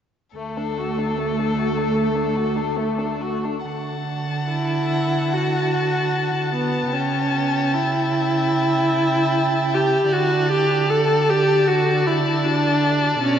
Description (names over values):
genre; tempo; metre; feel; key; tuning
classical, slow romantic movement for string quartet; 64-79 BPM; 4/4; rubato; D major; A4 = 442 Hz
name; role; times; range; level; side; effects
warm violin; melody; 0.4-13.4 s; A4 to A5; -27 LUFS; left 6 dB; none
rich violin; second line; 0.4-13.4 s; A3 to G5; -28 LUFS; left 2 dB; none
clear viola; accompaniment; 0.4-13.4 s; A3 to A4; -21 LUFS; equal; none
warm cello; bass; 0.4-13.4 s; D2 to D3; -25 LUFS; right 4 dB; none
room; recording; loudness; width
wet cathedral reverb, RT60 6.4 s; in a vast, echoing space, nothing above 7.7 kHz; -18 LUFS; side -9 dB against mid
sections
0.4-3.7 A section; 3.7-13.4 B section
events
none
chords
0.4 D; 6.9 A7/C#; 10.1 D5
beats
| 0.37 1.19 1.97 2.77 | 3.66 4.50 5.32 6.13 | 6.93 7.73 8.53 9.34 | 10.12 10.90 11.68 12.45 | 13.22